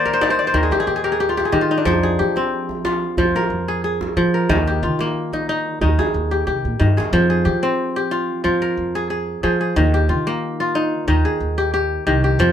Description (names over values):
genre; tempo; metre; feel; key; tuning
west african traditional, West African string and xylophone music; 91 BPM; 4/4; swing 53% on 16ths; unclear; A4 = 440 Hz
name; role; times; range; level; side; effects
kora; arpeggios; 0.0-12.5 s; Eb3 to G5; -18 LUFS; left 1 dB; none
upright bass; bass; 0.0-12.5 s; C2 to F3; -22 LUFS; right 1 dB; none
djembe; percussion; 0.1-7.1 s; none; -27 LUFS; right 2 dB; none
room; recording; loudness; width
moderate studio ambience, RT60 0.5 s; band playing live in one room; -17 LUFS; side -9 dB against mid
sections
0.0-7.1 A section; 7.1-12.5 B section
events
kora fill 0.0-1.9; drum fill 6.5-7.1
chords
0.0 Eb; 1.9 Fm; 4.5 Eb; 7.1 Fm; 9.8 Eb